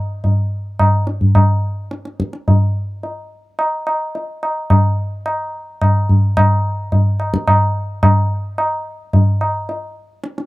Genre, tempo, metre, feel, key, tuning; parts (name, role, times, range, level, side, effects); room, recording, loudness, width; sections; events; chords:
indian classical; 108 BPM; 3/4; straight
tabla; percussion; 0.2-10.5 s; -14 LUFS; equal
small room ambience; dry, close 1970s-style studio recording; -14 LUFS; side -20 dB against mid
0.0-6.4 A section; 6.4-10.5 B section